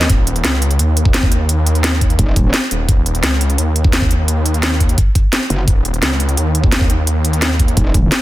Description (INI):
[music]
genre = dark technical drum and bass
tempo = 172 BPM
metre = 4/4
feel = straight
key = Eb minor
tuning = A4 = 441 Hz
[part]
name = metallic wobble bass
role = bass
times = 0.0-0.1, 2.2-2.5, 5.5-5.7, 7.8-8.1 s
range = Eb1 to Gb1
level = -16 LUFS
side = equal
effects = distortion, chorus
[part]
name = drum and bass drum kit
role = drums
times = 0.0-8.2 s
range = hi-hat, snare drum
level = -18 LUFS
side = equal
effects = none
[part]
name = wide detuned saw bass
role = bass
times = 0.1-7.8 s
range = Eb1 to Eb2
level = -15 LUFS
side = equal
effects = chorus, overdrive
[part]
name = electronic kick drum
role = drums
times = 0.1-8.0 s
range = none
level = -14 LUFS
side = equal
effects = none
[sound]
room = little or no reverb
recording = dense, heavily limited modern master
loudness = -12 LUFS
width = side -16 dB against mid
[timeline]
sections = 0.0-8.2 A section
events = none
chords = 0.0 Eb7(no3)